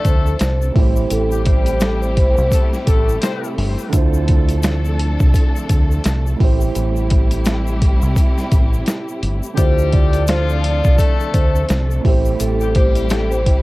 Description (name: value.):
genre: hip hop, boom-bap hip-hop.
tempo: 85 BPM.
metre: 4/4.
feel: swing 60% on 16ths.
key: D minor.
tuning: A4 = 439 Hz.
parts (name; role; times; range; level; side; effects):
vibraphone with soft mallets; melody; 0.0-3.4, 9.6-13.6 s; A4 to D5; -22 LUFS; equal; high-pass filter, low-pass filter, cassette tape, analog delay.
dark concert grand piano; accompaniment; 0.0-13.6 s; A2 to C5; -27 LUFS; right 8 dB; high-pass filter, low-pass filter, cassette tape.
warm studio string section; sustained chords; 0.0-13.6 s; C3 to A4; -26 LUFS; equal; high-pass filter, low-pass filter, cassette tape.
clear horn section; stabs; 0.0-3.5, 9.6-13.4 s; F3 to C5; -27 LUFS; left 8 dB; high-pass filter, low-pass filter, cassette tape, analog delay.
boom bap sampler-style drum kit; drums; 0.0-13.6 s; hi-hat, kick drum, snare drum; -15 LUFS; equal; none.
deep dub fingered electric bass; bass; 0.1-13.6 s; G1 to D2; -19 LUFS; equal; none.
egg shaker; percussion; 0.1-13.4 s; none; -36 LUFS; left 9 dB; none.
room: little or no reverb.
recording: home recording on cassette.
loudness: -14 LUFS.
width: side -20 dB against mid.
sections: 0.0-13.6 A section.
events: none.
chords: 0.0 Dm7; 0.8 Am7; 3.9 Dm7; 6.4 Am7; 9.6 Dm7; 12.0 Am7.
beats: 0.40 | 1.11 1.81 2.52 3.23 | 3.93 4.64 5.34 6.05 | 6.75 7.46 8.17 8.87 | 9.58 10.28 10.99 11.70 | 12.40 13.11.